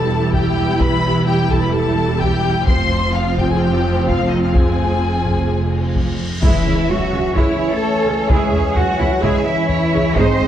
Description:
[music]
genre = cinematic, hybrid orchestral and electronic film score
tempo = 128 BPM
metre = 4/4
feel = straight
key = unclear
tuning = A4 = 441 Hz
[part]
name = dark studio violin section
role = melody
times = 0.0-10.5 s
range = C#5 to C6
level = -25 LUFS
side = left 5 dB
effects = none
[part]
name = warm symphonic violin section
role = second line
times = 0.0-10.5 s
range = D#4 to F#5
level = -26 LUFS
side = left 2 dB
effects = none
[part]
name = warm symphonic viola section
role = accompaniment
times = 0.0-10.5 s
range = F3 to E4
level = -23 LUFS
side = right 2 dB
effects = none
[part]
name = mellow French horn section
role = sustained chords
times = 0.0-10.5 s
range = E3 to G4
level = -23 LUFS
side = left 3 dB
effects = none
[part]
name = warm symphonic cello section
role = bass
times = 0.0-10.5 s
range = E2 to B#4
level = -21 LUFS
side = right 2 dB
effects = none
[part]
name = warm symphonic double bass section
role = bass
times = 0.0-10.5 s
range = E1 to C#2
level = -21 LUFS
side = right 2 dB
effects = none
[part]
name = taiko ensemble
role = drums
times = 0.3-10.5 s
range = none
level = -20 LUFS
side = equal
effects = none
[part]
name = cymbal swell and impact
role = sound effects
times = 6.0-8.3 s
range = none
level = -24 LUFS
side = left 1 dB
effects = none
[part]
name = clear trombone section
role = sustained chords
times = 6.4-10.5 s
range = D#3 to C#4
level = -25 LUFS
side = right 1 dB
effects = none
[sound]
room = moderate scoring stage reverb, RT60 1.4 s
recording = dark, warm production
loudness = -14 LUFS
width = side -10 dB against mid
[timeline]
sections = 0.0-6.4 A section; 6.4-10.5 B section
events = cymbal swell 6.0-6.4; impact 6.4-8.3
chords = 0.0 Em; 2.7 Fm; 6.4 C#m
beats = 0.33 | 0.80 1.27 1.74 2.20 | 2.67 3.14 3.61 4.08 | 4.55 5.02 5.49 5.95 | 6.42 6.89 7.36 7.83 | 8.30 8.77 9.24 9.70 | 10.17

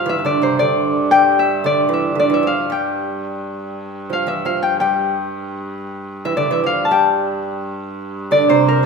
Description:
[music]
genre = medieval dance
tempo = 114 BPM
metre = 2/4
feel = straight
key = unclear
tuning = A4 = 440 Hz
[part]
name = Celtic harp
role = melody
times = 0.0-8.9 s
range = Bb4 to A5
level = -16 LUFS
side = left 2 dB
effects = none
[part]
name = lute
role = second line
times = 0.0-8.9 s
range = C3 to G3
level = -21 LUFS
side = right 6 dB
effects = none
[part]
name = rich hurdy-gurdy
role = drone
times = 0.0-8.9 s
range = G2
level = -28 LUFS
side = right 1 dB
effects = none
[part]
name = breathy mellow tenor recorder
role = second line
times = 8.3-8.9 s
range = C5 to D5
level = -22 LUFS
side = left 5 dB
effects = none
[sound]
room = wet recital hall reverb, RT60 1.4 s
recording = minimal, uncompressed stereo recording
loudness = -15 LUFS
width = side -5 dB against mid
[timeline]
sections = 0.0-7.4 A section; 7.4-8.9 A section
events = none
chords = none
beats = | 0.07 0.59 | 1.12 1.65 | 2.17 2.70 | 3.23 3.75 | 4.28 4.80 | 5.33 5.86 | 6.38 6.91 | 7.43 7.96 | 8.48

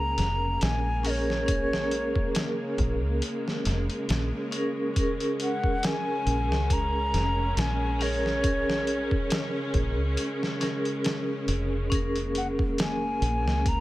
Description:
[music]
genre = trip hop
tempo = 69 BPM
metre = 4/4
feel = swing 55% on 16ths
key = Bb minor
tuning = A4 = 441 Hz
[part]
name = hollow wooden flute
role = melody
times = 0.0-13.8 s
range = Db5 to Bb5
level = -31 LUFS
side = left 1 dB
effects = tape echo
[part]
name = vibraphone with medium hard mallets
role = accompaniment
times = 0.0-13.8 s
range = Db4 to Bb4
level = -30 LUFS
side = equal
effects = tremolo, vintage 12-bit sampler grit, tape echo
[part]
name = clear symphonic string section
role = sustained chords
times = 0.0-13.8 s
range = Db3 to Db4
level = -35 LUFS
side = equal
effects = none
[part]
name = deep dub fingered electric bass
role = bass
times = 0.0-13.8 s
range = F1 to Db2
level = -29 LUFS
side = equal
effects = none
[part]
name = dusty soul sampler-style drum kit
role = drums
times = 0.2-13.8 s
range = hi-hat, kick drum, snare drum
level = -30 LUFS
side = equal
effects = overdrive
[sound]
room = light reverb, small room ambience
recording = none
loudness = -24 LUFS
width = side -17 dB against mid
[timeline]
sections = 0.0-13.8 A section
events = none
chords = 0.0 Bbm7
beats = 0.61 | 1.49 2.35 3.22 4.09 | 4.96 5.83 6.70 7.57 | 8.44 9.31 10.18 11.05 | 11.92 12.79 13.66

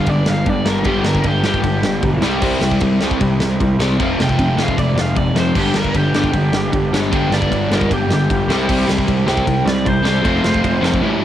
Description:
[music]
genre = punk rock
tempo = 153 BPM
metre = 4/4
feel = straight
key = G mixolydian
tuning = A4 = 440 Hz
[part]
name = overdriven semi-hollow guitar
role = melody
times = 0.0-11.0 s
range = G4 to G5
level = -22 LUFS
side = right 1 dB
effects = cassette tape
[part]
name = crunchy overdriven guitar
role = riff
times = 0.0-11.2 s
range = F2 to C4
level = -18 LUFS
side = equal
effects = cassette tape
[part]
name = crunchy overdriven guitar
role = riff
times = 0.0-11.2 s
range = F2 to G4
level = -22 LUFS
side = equal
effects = cassette tape
[part]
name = fuzz picked electric bass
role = bass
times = 0.0-11.0 s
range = F1 to C2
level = -22 LUFS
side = equal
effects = overdrive
[part]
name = big rock drum kit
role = drums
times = 0.1-11.0 s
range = crash cymbal, kick drum, ride cymbal, snare drum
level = -21 LUFS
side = equal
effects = cassette tape
[sound]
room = little or no reverb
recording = home recording on cassette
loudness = -14 LUFS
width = side -11 dB against mid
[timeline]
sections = 0.0-11.2 A section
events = overdriven electric guitar solo 0.0-11.2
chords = 0.0 G; 2.2 C; 4.0 F; 5.6 G; 8.5 C; 10.2 F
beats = 0.08 0.47 | 0.86 1.25 1.65 2.04 | 2.43 2.82 3.21 3.60 | 3.99 4.38 4.78 5.17 | 5.56 5.95 6.34 6.73 | 7.12 7.51 7.90 8.29 | 8.69 9.08 9.47 9.86 | 10.25 10.64 11.03

